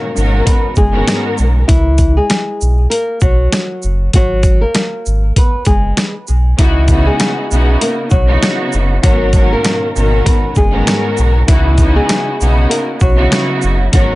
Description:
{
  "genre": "hip hop, boom-bap hip-hop",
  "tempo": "98 BPM",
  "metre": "4/4",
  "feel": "swing 58% on 16ths",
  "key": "C# dorian",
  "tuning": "A4 = 436 Hz",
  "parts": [
    { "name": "flamenco guitar", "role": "melody", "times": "0.0-14.2 s", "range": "E3 to B4", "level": "-18 LUFS", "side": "left 1 dB", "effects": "high-pass filter, low-pass filter, plate reverb, tape echo" },
    { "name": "warm symphonic string section", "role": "accompaniment", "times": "0.0-1.6, 6.6-14.2 s", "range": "G#2 to A#4", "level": "-17 LUFS", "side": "equal", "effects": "cassette tape, high-pass filter, low-pass filter, plate reverb" },
    { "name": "sub bass with octave", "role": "bass", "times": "0.2-14.2 s", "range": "F#1 to C#2", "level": "-13 LUFS", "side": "equal", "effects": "none" },
    { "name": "boom bap sampler-style drum kit", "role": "drums", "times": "0.2-14.1 s", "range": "hi-hat, kick drum, shaker, snare drum", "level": "-13 LUFS", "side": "equal", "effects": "none" }
  ],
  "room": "little or no reverb",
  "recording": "nothing above 10.8 kHz",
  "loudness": "-10 LUFS",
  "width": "side -18 dB against mid",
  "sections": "0.0-14.2 A section",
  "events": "none",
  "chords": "0.0 G#m11; 1.7 C#m7; 4.1 G#m9; 6.6 C#m11; 9.0 G#m11; 11.5 C#m11"
}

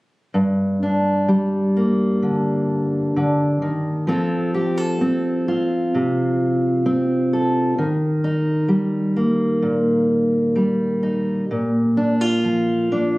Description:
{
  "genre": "folk, solo fingerstyle acoustic guitar",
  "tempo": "64 BPM",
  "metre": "4/4",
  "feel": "straight",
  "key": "G minor",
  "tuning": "A4 = 438 Hz",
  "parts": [
    { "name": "fingerpicked steel-string acoustic guitar", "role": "solo", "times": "0.3-13.2 s", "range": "G2 to A4", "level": "-17 LUFS", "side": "equal", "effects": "none" }
  ],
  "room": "little or no reverb",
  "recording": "recorded on a phone in the room, club reverb, compression",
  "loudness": "-17 LUFS",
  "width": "side -20 dB against mid",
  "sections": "0.3-13.2 A section",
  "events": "none",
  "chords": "0.3 Gm; 4.1 F; 7.8 Eb; 11.5 Bb"
}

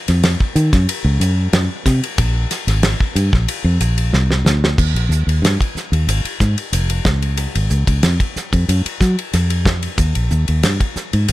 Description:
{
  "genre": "electric jazz fusion",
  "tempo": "92 BPM",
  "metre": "4/4",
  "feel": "straight",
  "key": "unclear",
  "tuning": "A4 = 440 Hz",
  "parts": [
    { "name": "fingered electric bass", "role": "bass", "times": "0.1-11.3 s", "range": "F1 to Gb3", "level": "-15 LUFS", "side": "equal", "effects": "none" },
    { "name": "damped 70s drum kit", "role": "drums", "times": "0.1-11.3 s", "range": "crash cymbal, hi-hat, kick drum, ride cymbal, snare drum", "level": "-18 LUFS", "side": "equal", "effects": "none" }
  ],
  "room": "little or no reverb",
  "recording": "none",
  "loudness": "-14 LUFS",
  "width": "side -16 dB against mid",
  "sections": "0.0-4.8 A section; 4.8-11.3 B section",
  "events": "drum fill 4.1-4.8",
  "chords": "none"
}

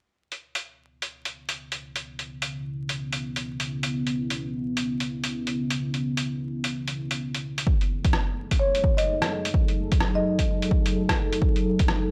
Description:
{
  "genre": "future garage",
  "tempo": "128 BPM",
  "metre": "4/4",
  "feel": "swing 62% on 16ths",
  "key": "unclear",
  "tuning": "A4 = 440 Hz",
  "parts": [
    { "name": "deep dark ambient pad", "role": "sustained chords", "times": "1.8-12.1 s", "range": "C#3 to A4", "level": "-32 LUFS", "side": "equal", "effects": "chorus, built-in reverb, sidechain pumping" },
    { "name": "lo-fi sampler-style drum kit", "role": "drums", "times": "0.3-12.0 s", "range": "hi-hat, rim click", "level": "-31 LUFS", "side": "equal", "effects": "studio reverb" },
    { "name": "electronic kick drum", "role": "drums", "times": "7.7-11.9 s", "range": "none", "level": "-26 LUFS", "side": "equal", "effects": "overdrive, studio reverb" },
    { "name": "marimba with medium mallets", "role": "melody", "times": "8.6-10.5 s", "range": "C#5 to D#5", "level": "-30 LUFS", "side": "equal", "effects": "tape echo" }
  ],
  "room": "little or no reverb",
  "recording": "dry, gritty hardware recording, vinyl crackle",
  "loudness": "-26 LUFS",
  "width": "mono",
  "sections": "0.2-12.1 A section",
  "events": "filter sweep on ambient pad 0.2-12.1",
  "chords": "0.2 C#m7; 7.7 F#m69"
}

